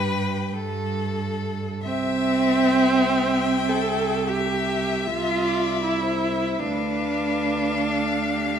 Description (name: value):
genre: classical, slow romantic movement for string quartet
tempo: 44-53 BPM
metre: 4/4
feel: rubato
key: C major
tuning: A4 = 440 Hz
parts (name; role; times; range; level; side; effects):
- rich violin; melody; 0.0-8.6 s; G4 to G5; -30 LUFS; left 10 dB; none
- rich violin; second line; 0.0-8.6 s; A4 to F5; -28 LUFS; left 5 dB; none
- rich viola; accompaniment; 0.0-8.6 s; C4 to A4; -22 LUFS; right 2 dB; none
- warm cello; bass; 0.0-8.6 s; C2 to G2; -28 LUFS; right 4 dB; none
room: wet recital hall reverb, RT60 1.4 s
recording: none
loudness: -21 LUFS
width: side -8 dB against mid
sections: 0.0-1.8 A section; 1.8-8.6 B section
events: none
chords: 0.0 G; 1.8 C; 6.6 G7/D (rootless)